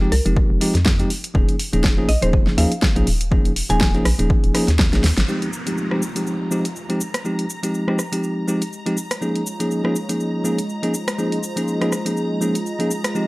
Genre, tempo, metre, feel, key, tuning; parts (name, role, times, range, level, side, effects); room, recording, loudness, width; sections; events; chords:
deep house; 122 BPM; 4/4; swing 56% on 16ths; A4 = 440 Hz
bell-like tine electric piano; stabs; 0.0-13.3 s; F3 to Ab4; -22 LUFS; equal; sidechain pumping, low-pass filter
hollow knocking FM bass; bass; 0.0-5.2 s; Eb1 to F2; -20 LUFS; equal; sidechain pumping
mallet-like synth pluck; melody; 0.1-4.1 s; Bb4 to Ab5; -27 LUFS; equal; chorus, tape echo
deep house drum kit; drums; 0.1-13.3 s; hi-hat, rim click, shaker, snare drum; -24 LUFS; equal; overdrive, studio reverb
electronic kick drum; drums; 0.4-4.9 s; -19 LUFS; equal; overdrive, studio reverb
warm analog pad; sustained chords; 5.3-13.3 s; Ab3 to Eb5; -30 LUFS; right 1 dB; chorus, sidechain pumping
downlifter; sound effects; 5.3-9.2 s; -34 LUFS; left 1 dB
string machine, violins; texture; 5.3-13.3 s; Bb5; -35 LUFS; equal; ensemble chorus
little or no reverb; dry, gritty hardware recording; -18 LUFS; side -22 dB against mid
0.0-5.3 A section; 5.3-13.3 B section
drum fill 4.9-5.3; band accent 5.2; filter sweep on analog synth pad 5.3-13.3
0.0 Fm7; 1.1 Eb9sus4; 5.3 Fm7; 9.0 Eb9sus4